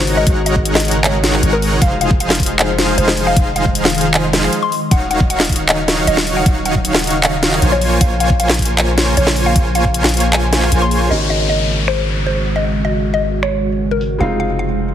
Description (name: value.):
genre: future bass.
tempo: 155 BPM.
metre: 4/4.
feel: half-time.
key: unclear.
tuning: A4 = 440 Hz.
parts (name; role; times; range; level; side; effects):
mallet-like synth pluck; melody; 0.0-14.9 s; Bb4 to C6; -21 LUFS; left 2 dB; chorus, phaser, cassette tape, sidechain pumping, digital delay.
ethereal airy pad; sustained chords; 0.0-14.9 s; Db3 to Eb5; -23 LUFS; equal; ensemble chorus, built-in reverb, sidechain pumping.
supersaw chords; riff; 0.0-11.1 s; Eb3 to Ab5; -18 LUFS; equal; sidechain pumping, low-pass filter.
long sustained 808-style bass; bass; 0.0-14.9 s; Eb1 to Bb1; -19 LUFS; equal; sidechain pumping.
trap drum kit; drums; 0.1-14.1 s; finger snaps, handclaps, hi-hat, snare drum; -17 LUFS; equal; low-pass filter on hats, low-pass filter on snare, low-pass filter on toms.
electronic kick drum; drums; 0.3-9.9 s; none; -15 LUFS; equal; none.
felt-muted upright piano; accompaniment; 11.1-14.9 s; Ab3 to Gb4; -24 LUFS; left 3 dB; sidechain pumping, digital delay.
downlifter and riser; sound effects; 11.1-14.9 s; none; -24 LUFS; left 3 dB; none.
room: moderate digital room reverb, RT60 1.3 s.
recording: heavily compressed radio sound, multiband compression.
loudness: -12 LUFS.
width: side -10 dB against mid.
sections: 0.0-11.1 A section; 11.1-14.9 B section.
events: drop 0.0-11.1.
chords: 0.0 Ab7sus4; 1.8 Fm7; 4.9 Ebm9; 7.8 Bbm7; 11.1 Ab7sus4; 14.2 Fm7.